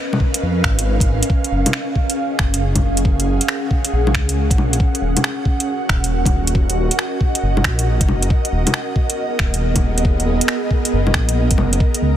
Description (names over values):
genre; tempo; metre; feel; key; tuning
future garage; 137 BPM; 4/4; swing 66% on 16ths; unclear; A4 = 440 Hz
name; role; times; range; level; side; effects
ethereal airy pad; sustained chords; 0.0-12.2 s; Cb4 to Gb5; -22 LUFS; right 1 dB; ensemble chorus, built-in reverb, sidechain pumping
garage drum kit; drums; 0.1-12.0 s; bongos, finger snaps, hi-hat; -21 LUFS; left 1 dB; small room reverb, soft clipping on snare
electronic kick drum; drums; 0.2-11.9 s; none; -18 LUFS; equal; small room reverb
swelling detuned saw bass; bass; 0.4-12.2 s; Eb1 to F2; -18 LUFS; equal; sidechain pumping
room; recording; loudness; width
little or no reverb; dense, heavily limited modern master; -15 LUFS; side -11 dB against mid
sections
0.0-1.3 A section; 1.3-12.2 B section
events
none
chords
0.0 Db13; 1.3 Gbmaj9; 4.8 Ebm7; 8.3 Abm9/Eb